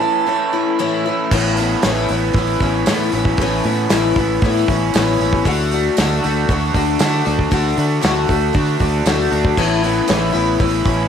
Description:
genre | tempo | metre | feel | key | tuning
folk rock and heartland rock | 116 BPM | 4/4 | straight | A major | A4 = 443 Hz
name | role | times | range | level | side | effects
clear harmonica | second line | 0.0-0.8 s | A5 | -19 LUFS | right 10 dB | cassette tape
picked twelve-string acoustic guitar | accompaniment | 0.0-11.1 s | A2 to F#4 | -19 LUFS | left 9 dB | lush chorus, cassette tape
raw garage guitar | riff | 0.0-11.1 s | A2 to F#4 | -21 LUFS | right 11 dB | overdrive, spring reverb, cassette tape
fingered electric bass | bass | 1.3-11.1 s | A1 to D3 | -21 LUFS | equal | none
natural country drum kit | drums | 1.3-11.0 s | crash cymbal, hi-hat, kick drum, snare drum | -20 LUFS | right 1 dB | cassette tape
tambourine | percussion | 1.8-10.2 s | none | -31 LUFS | right 13 dB | none
room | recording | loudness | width
light reverb | home recording on cassette | -14 LUFS | side -8 dB against mid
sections
0.0-1.3 A section; 1.3-11.1 B section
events
break 0.0-1.3; harmonica solo 0.0-1.3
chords
0.0 A; 1.3 Aadd9; 5.5 D; 9.6 Aadd9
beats
0.28 0.80 | 1.32 1.83 2.35 2.87 | 3.39 3.90 4.42 4.93 | 5.45 5.97 6.48 7.00 | 7.51 8.03 8.54 9.06 | 9.57 10.09 10.60

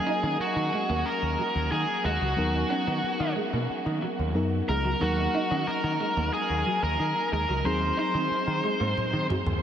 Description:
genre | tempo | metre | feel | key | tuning
1980s-style pop | 91 BPM | 4/4 | straight | Eb minor | A4 = 440 Hz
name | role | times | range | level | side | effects
biting lead guitar | melody | 0.0-9.3 s | Gb4 to C5 | -28 LUFS | equal | overdrive, tape echo
mellow FM electric piano | accompaniment | 0.0-9.6 s | Gb3 to Bb4 | -32 LUFS | left 1 dB | chorus
clean electric guitar | riff | 0.1-9.4 s | Gb3 to Eb4 | -34 LUFS | right 2 dB | lush chorus, tape echo
picked electric bass | bass | 0.2-9.6 s | Db2 to Eb3 | -29 LUFS | equal | none
toms | drums | 9.0-9.6 s | none | -31 LUFS | equal | none
room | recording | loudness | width
wet huge ambient reverb, RT60 7.9 s | dreamy mix soaked in reverb | -24 LUFS | side -9 dB against mid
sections
0.0-9.6 A section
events
drum fill 9.0-9.6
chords
0.0 Gb/Eb; 2.4 Bmaj7/D#; 5.0 Ebm; 7.6 Ab7/Eb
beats
0.40 1.06 1.72 | 2.38 3.03 3.69 4.35 | 5.01 5.67 6.33 6.99 | 7.65 8.31 8.97

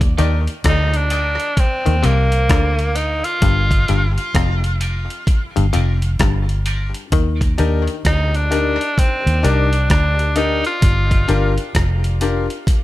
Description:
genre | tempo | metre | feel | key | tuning
dub reggae | 65 BPM | 4/4 | swing 62% on 16ths | Eb major | A4 = 440 Hz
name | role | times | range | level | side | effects
mellow tonewheel organ | accompaniment | 0.0-3.3 s | none | barely audible | none | none
vintage muted fingered electric bass | bass | 0.0-12.5 s | F1 to Eb2 | -17 LUFS | equal | none
dusty soul sampler-style drum kit | drums | 0.0-12.8 s | hi-hat, kick drum, rim click | -19 LUFS | equal | none
clean electric guitar | accompaniment | 0.2-6.8 s | Eb4 to D5 | -33 LUFS | right 4 dB | lush chorus, high-pass filter, tape echo
muted clav | riff | 0.2-7.4 s | F2 to Eb3 | -26 LUFS | left 10 dB | tape echo
bright upright piano | stabs | 0.2-12.4 s | D4 to Bb4 | -24 LUFS | left 5 dB | high-pass filter, tape echo
bright tenor saxophone | melody | 0.7-11.5 s | Bb3 to F4 | -21 LUFS | equal | tape echo
room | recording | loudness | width
digital ambience | none | -15 LUFS | side -16 dB against mid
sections
0.0-12.8 A section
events
filter sweep 0.0-7.1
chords
0.0 Ebmaj7; 3.4 Gm7; 7.1 Ebmaj7; 10.8 Gm7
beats
0.65 1.57 2.50 | 3.42 4.34 5.27 6.20 | 7.12 8.05 8.97 9.90 | 10.82 11.75 12.67

